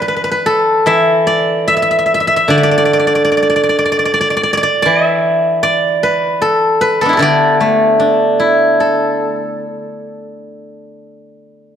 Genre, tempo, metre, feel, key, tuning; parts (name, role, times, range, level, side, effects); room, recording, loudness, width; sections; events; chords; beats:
chinese traditional, Chinese solo plucked strings; 75 BPM; 4/4; rubato; D zhi mode; A4 = 440 Hz
steel-string zither; solo; 0.0-11.3 s; D3 to E5; -11 LUFS; equal
moderate scoring stage reverb, RT60 2.0 s; dark, warm production; -10 LUFS; side -8 dB against mid
0.0-11.8 A section
0.07 0.88 1.69 | 2.49 3.29 4.09 4.88 | 5.66 6.44 7.22 8.01 | 8.81 9.64 10.47